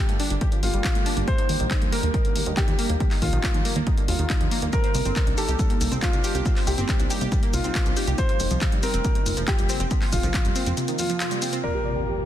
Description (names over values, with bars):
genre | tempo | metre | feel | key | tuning
uplifting trance | 139 BPM | 4/4 | straight | unclear | A4 = 440 Hz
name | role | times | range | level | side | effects
warm concert grand piano | second line | 0.0-12.2 s | F4 to C5 | -30 LUFS | left 1 dB | tape echo
analog pluck | arpeggios | 0.0-11.6 s | Eb2 to C5 | -31 LUFS | right 2 dB | chorus, sidechain pumping, ping-pong delay
plucky analog bass | bass | 0.1-10.7 s | F1 to Eb2 | -26 LUFS | equal | sidechain pumping
punchy analog drum machine | drums | 0.1-11.7 s | crash cymbal, handclaps, hi-hat, shaker | -30 LUFS | left 1 dB | low-pass filter on hats, low-pass filter on snare, low-pass filter on cymbals, low-pass filter on perc, low-pass filter on room
electronic kick drum | drums | 0.4-10.4 s | none | -24 LUFS | equal | none
supersaw chords | melody | 11.6-12.3 s | G4 to D5 | -30 LUFS | left 1 dB | sidechain pumping, low-pass filter, tape echo
impact | sound effects | 11.6-12.3 s | none | -29 LUFS | equal | none
room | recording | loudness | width
light reverb | dense, heavily limited modern master | -21 LUFS | side -11 dB against mid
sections
0.0-11.6 A section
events
impact 11.6-12.3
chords
0.0 Gm; 1.3 Ebmaj7; 4.7 Cm7; 8.2 Fsus4; 11.6 Gm